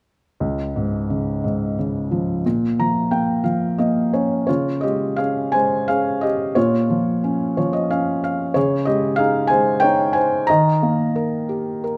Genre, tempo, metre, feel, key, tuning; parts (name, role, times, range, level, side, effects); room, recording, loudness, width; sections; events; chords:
classical, lyrical solo piano; 84-96 BPM; 3/4; rubato; Db lydian; A4 = 440 Hz
felt-muted upright piano; solo; 0.4-12.0 s; Db2 to Bb5; -20 LUFS; equal
moderate recital hall reverb, RT60 1.5 s; close, detailed microphones; -20 LUFS; mono
0.4-4.5 A section; 4.5-12.0 B section
felt piano fill 2.4-4.5, 7.2-8.6
0.4 Db; 2.4 Bbm; 4.5 Db; 6.6 Bbm; 8.6 Dbsus2; 10.5 Eb